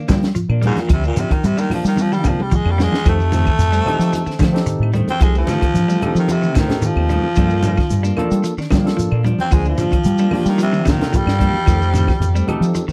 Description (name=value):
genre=afrobeat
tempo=111 BPM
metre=4/4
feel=straight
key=unclear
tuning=A4 = 439 Hz
part: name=clean electric guitar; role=arpeggios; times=0.0-12.9 s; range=D3 to G3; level=-26 LUFS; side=equal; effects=none
part: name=semi-hollow electric guitar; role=stabs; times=0.0-12.9 s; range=Eb3 to D4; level=-28 LUFS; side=equal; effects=none
part: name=deep dub fingered electric bass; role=bass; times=0.1-12.9 s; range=C2 to G3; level=-20 LUFS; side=equal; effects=none
part: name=compact cocktail drum kit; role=drums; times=0.1-12.9 s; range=hi-hat, kick drum, snare drum, toms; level=-21 LUFS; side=equal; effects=none
part: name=claves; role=percussion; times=0.1-12.6 s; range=none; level=-38 LUFS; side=equal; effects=none
part: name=congas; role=percussion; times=0.1-12.9 s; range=none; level=-28 LUFS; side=equal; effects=none
part: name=shekere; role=percussion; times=0.1-12.9 s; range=none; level=-29 LUFS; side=equal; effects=none
part: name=raspy baritone saxophone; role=melody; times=0.7-12.7 s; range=Ab2 to C4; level=-24 LUFS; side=equal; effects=none
part: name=barky tine electric piano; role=accompaniment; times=3.1-12.8 s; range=Bb3 to C5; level=-28 LUFS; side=equal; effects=overdrive
room=little or no reverb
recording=dry, close 1970s-style studio recording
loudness=-17 LUFS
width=mono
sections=0.0-12.9 A section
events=baritone saxophone solo 0.0-12.9; drum fill 2.0-3.1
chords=0.0 Gm7; 3.1 F7; 7.4 Gm7; 11.7 F7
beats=0.36 | 0.90 1.44 1.98 2.52 | 3.06 3.60 4.13 4.67 | 5.21 5.75 6.29 6.83 | 7.36 7.90 8.44 8.98 | 9.52 10.06 10.59 11.13 | 11.67 12.21 12.75